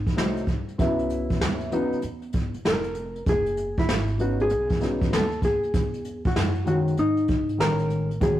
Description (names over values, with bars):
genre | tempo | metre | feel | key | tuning
hip hop, jazz-hop | 97 BPM | 4/4 | swing 64% on 16ths | unclear | A4 = 437 Hz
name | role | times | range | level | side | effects
hollow-body jazz guitar | melody | 0.0-8.4 s | D#4 to A#4 | -26 LUFS | equal | none
upright bass | bass | 0.0-8.4 s | E#1 to G#2 | -31 LUFS | right 1 dB | none
jazz brush drum kit | drums | 0.1-8.4 s | hi-hat, kick drum, snare drum | -26 LUFS | equal | none
dark baby grand piano | accompaniment | 0.2-8.4 s | C#3 to G#4 | -26 LUFS | left 1 dB | none
room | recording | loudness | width
moderate stone room reverb, RT60 1.0 s | rough rehearsal-room recording, warm saturation | -22 LUFS | side -13 dB against mid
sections
0.0-8.4 A section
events
none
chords
0.0 G#7b9 (rootless); 0.8 C#m9; 3.3 F#sus24; 4.5 B69; 5.7 Emaj9